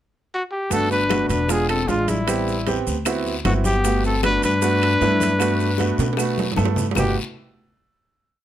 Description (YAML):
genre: Afro-Cuban jazz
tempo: 154 BPM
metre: 4/4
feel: straight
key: G major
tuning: A4 = 440 Hz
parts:
  - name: breathy trumpet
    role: melody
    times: 0.3-7.2 s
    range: E4 to B4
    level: -23 LUFS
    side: equal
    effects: none
  - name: mellow duduk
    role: second line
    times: 0.7-7.1 s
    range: B2 to D4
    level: -26 LUFS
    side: left 6 dB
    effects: none
  - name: clear baby grand piano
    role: accompaniment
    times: 0.7-7.1 s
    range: G#3 to A4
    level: -24 LUFS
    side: right 4 dB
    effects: none
  - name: upright bass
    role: bass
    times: 0.7-7.2 s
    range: E1 to B2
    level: -24 LUFS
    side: equal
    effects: none
  - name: bongos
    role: percussion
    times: 0.7-7.0 s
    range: none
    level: -33 LUFS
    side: left 10 dB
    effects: none
  - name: congas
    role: percussion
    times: 0.7-7.1 s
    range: none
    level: -29 LUFS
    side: left 1 dB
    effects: none
  - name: guiro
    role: percussion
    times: 0.7-7.0 s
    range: none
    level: -35 LUFS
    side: left 7 dB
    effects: none
  - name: maracas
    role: percussion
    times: 0.7-7.1 s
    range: none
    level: -34 LUFS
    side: right 8 dB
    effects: none
  - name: claves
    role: percussion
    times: 1.1-7.1 s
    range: none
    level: -32 LUFS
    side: left 9 dB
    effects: none
  - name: timbales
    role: percussion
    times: 1.1-7.1 s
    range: none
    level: -30 LUFS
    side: right 9 dB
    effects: none
room: light reverb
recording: close, detailed microphones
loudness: -18 LUFS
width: side -11 dB against mid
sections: 0.0-0.7 pickup bar; 0.7-7.0 A section; 7.0-8.4 final chord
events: drum fill 6.0-7.0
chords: 0.0 N.C.; 0.7 Gmaj7; 1.5 E7b9; 2.3 Am9; 3.1 D13; 3.8 Gmaj7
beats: 0.32 | 0.71 1.10 1.49 1.89 | 2.28 2.67 3.06 3.45 | 3.84 4.23 4.62 5.01 | 5.41 5.80 6.19 6.58 | 6.97